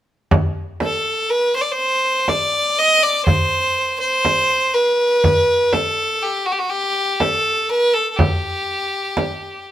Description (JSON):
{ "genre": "Turkish makam ensemble", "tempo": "122 BPM (eighths)", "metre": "10/8", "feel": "straight", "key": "unclear", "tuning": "A4 = 439 Hz", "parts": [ { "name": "frame drum", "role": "percussion", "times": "0.3-9.4 s", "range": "none", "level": "-19 LUFS", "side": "right 1 dB", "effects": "none" }, { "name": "bright violin", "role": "melody", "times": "0.8-9.6 s", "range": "F#4-20c to Eb5", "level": "-16 LUFS", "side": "equal", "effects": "none" } ], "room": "light reverb", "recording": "band playing live in one room", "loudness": "-16 LUFS", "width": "side -12 dB against mid", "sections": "0.3-9.7 A section", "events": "none", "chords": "none" }